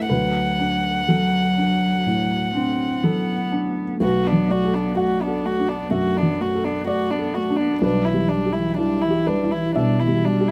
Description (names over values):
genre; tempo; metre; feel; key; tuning
neoclassical piano and strings; 62 BPM; 4/4; rubato; unclear; A4 = 440 Hz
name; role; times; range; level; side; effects
warm violin; melody; 0.0-10.5 s; D4 to F#5; -26 LUFS; equal; none
dark cello; second line; 0.0-10.5 s; E3 to C4; -28 LUFS; equal; none
felt-muted upright piano; accompaniment; 0.0-10.5 s; B1 to F#5; -24 LUFS; equal; none
room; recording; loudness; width
light reverb; close, detailed microphones; -21 LUFS; mono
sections
0.0-4.0 A section; 4.0-10.5 B section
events
none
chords
0.1 D; 4.0 Bm7; 7.8 Em7/B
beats
| 0.10 1.08 2.06 3.04 | 4.01 4.97 5.92 6.88 | 7.83 8.79 9.77